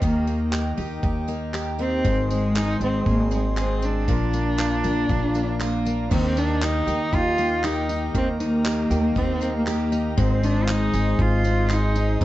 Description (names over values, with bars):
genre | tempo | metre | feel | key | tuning
acoustic pop | 118 BPM | 4/4 | swing 55% on 16ths | Eb major | A4 = 440 Hz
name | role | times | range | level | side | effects
warm cello | melody | 0.0-12.2 s | Ab3 to F4 | -24 LUFS | equal | plate reverb
picked steel-string acoustic guitar | accompaniment | 0.0-12.2 s | Ab2 to Bb4 | -27 LUFS | left 4 dB | none
pedal harmonium | sustained chords | 0.0-12.2 s | F4 to C6 | -33 LUFS | equal | none
direct-recorded clean electric guitar | arpeggios | 0.0-12.2 s | Eb3 to Ab4 | -33 LUFS | right 6 dB | warbly pitch drift
upright bass | bass | 0.0-12.2 s | Ab1 to Eb2 | -26 LUFS | equal | none
dusty soul sampler-style drum kit | drums | 0.0-12.2 s | crash cymbal, handclaps, kick drum, tambourine | -28 LUFS | equal | none
tambourine | percussion | 0.0-12.2 s | none | -44 LUFS | right 10 dB | none
room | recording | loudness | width
moderate studio reverb, RT60 0.5 s | dark, warm production, nothing above 8.0 kHz | -20 LUFS | side -15 dB against mid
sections
0.0-6.1 A section; 6.1-12.2 B section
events
none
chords
0.0 Eb; 2.0 Ab; 4.1 Bb; 6.1 Eb; 10.2 Ab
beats
| 0.02 0.52 1.03 1.54 | 2.05 2.55 3.06 3.57 | 4.08 4.59 5.09 5.60 | 6.11 6.62 7.13 7.64 | 8.14 8.65 9.16 9.67 | 10.18 10.69 11.20 11.71 | 12.21